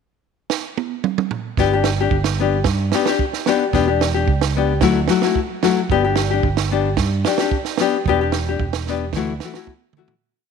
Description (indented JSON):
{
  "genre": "highlife guitar band",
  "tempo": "111 BPM",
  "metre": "4/4",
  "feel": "straight",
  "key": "G major",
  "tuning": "A4 = 440 Hz",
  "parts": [
    { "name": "compact cocktail drum kit", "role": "drums", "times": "0.5-10.2 s", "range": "kick drum, snare drum, toms", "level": "-22 LUFS", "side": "right 8 dB", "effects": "none" },
    { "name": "nylon-string guitar", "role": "accompaniment", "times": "1.6-10.1 s", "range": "E3 to G4", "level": "-19 LUFS", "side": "left 9 dB", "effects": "none" },
    { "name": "fingered electric bass", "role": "bass", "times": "1.6-9.4 s", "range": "E1 to G2", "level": "-21 LUFS", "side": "right 2 dB", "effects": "none" }
  ],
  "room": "light reverb, studio reverb",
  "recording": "1960s-style stereo with parts hard left and right",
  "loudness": "-17 LUFS",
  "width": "side -6 dB against mid",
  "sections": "0.0-1.6 pickup bar; 1.6-10.2 groove",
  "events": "drum fill 0.5-1.6, 9.7-10.2; fade-out 8.1-10.2",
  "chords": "0.0 N.C.; 1.6 G; 3.7 Em7; 4.8 Dadd9; 5.9 G; 8.1 Em7; 9.1 Dadd9"
}